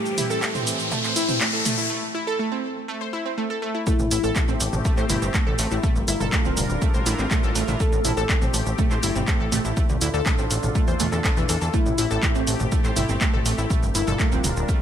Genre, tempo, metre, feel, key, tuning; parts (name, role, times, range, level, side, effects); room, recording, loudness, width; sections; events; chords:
melodic techno; 122 BPM; 4/4; straight; A phrygian; A4 = 440 Hz
wide unison lead; melody; 0.0-0.6, 3.9-4.5, 7.8-8.4, 11.7-12.4 s; E4 to A4; -29 LUFS; left 2 dB; sidechain pumping, digital delay
sweeping resonant pad; sustained chords; 0.0-14.8 s; A2 to Bb4; -31 LUFS; left 2 dB; chorus, sidechain pumping
riser; sound effects; 0.0-1.9 s; -26 LUFS; left 1 dB
punchy analog drum machine; drums; 0.1-14.8 s; handclaps, hi-hat, shaker, toms; -27 LUFS; right 1 dB; sidechain pumping on perc, small room ambience, sidechain pumping on toms, sidechain pumping on hats
analog pluck; arpeggios; 0.2-14.7 s; E3 to C5; -27 LUFS; right 2 dB; chorus, sidechain pumping, digital delay
electronic kick drum; drums; 0.4-14.8 s; -23 LUFS; equal; high-pass filter on kick, small room ambience
plucky analog bass; bass; 4.0-14.6 s; D1 to A2; -26 LUFS; equal; sidechain pumping
light reverb, digital ambience; -20 LUFS; side -9 dB against mid
0.0-3.9 A section; 3.9-14.8 B section
build-up 0.0-3.9; riser 0.0-1.9; break 1.9-3.9; drop 3.9-14.8
0.0 Am7; 1.9 Am; 3.9 Am7; 5.8 Gm7; 7.8 Am7; 9.8 Dm; 11.7 Am7; 13.7 Gm7